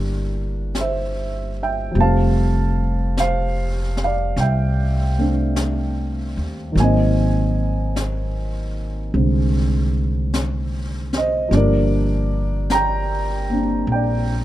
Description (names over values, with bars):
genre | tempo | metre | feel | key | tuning
jazz ballad | 50 BPM | 4/4 | swing 69% on 8ths | unclear | A4 = 440 Hz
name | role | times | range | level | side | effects
dark concert grand piano | accompaniment | 0.0-14.4 s | D3 to Bb5 | -21 LUFS | right 1 dB | none
upright bass | bass | 0.0-14.4 s | F1 to Eb2 | -21 LUFS | equal | none
jazz brush drum kit | drums | 0.7-14.4 s | brushed snare drum, hi-hat, snare drum | -31 LUFS | left 2 dB | none
room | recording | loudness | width
little or no reverb | dark, warm production | -18 LUFS | side -14 dB against mid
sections
0.0-14.4 A section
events
none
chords
0.0 C9; 2.0 Fmaj9; 6.8 Ab9; 11.5 Gm7